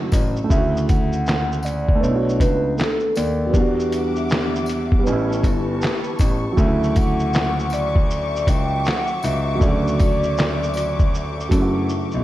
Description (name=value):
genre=lo-fi hip hop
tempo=79 BPM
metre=4/4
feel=swing 63% on 16ths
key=D major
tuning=A4 = 440 Hz
part: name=hollow clarinet-like synth lead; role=melody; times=0.0-11.9 s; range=A4 to G5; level=-25 LUFS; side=equal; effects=chorus, diffuse ambient delay
part: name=felt-muted upright piano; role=accompaniment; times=0.0-12.2 s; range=C#3 to F#4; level=-24 LUFS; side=right 3 dB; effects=cassette tape
part: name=dark studio string section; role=sustained chords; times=0.0-12.2 s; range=F#3 to E6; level=-30 LUFS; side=left 2 dB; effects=none
part: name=warm grand piano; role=bass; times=0.1-12.2 s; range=G1 to F#2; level=-23 LUFS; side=left 1 dB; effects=none
part: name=lo-fi sampler-style drum kit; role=drums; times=0.1-12.2 s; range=handclaps, hi-hat, kick drum, shaker, snare drum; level=-20 LUFS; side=equal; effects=none
part: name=tambourine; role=percussion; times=0.1-11.7 s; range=none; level=-44 LUFS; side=left 4 dB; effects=none
room=moderate lush hall reverb, RT60 1.8 s, small room ambience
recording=dreamy mix soaked in reverb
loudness=-17 LUFS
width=side -15 dB against mid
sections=0.5-12.2 A section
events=drum fill 11.9-12.2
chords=0.0 Dmaj9 (rootless); 0.5 Dmaj9; 2.0 Bm9; 3.5 Em9; 5.1 A9; 6.6 Dmaj9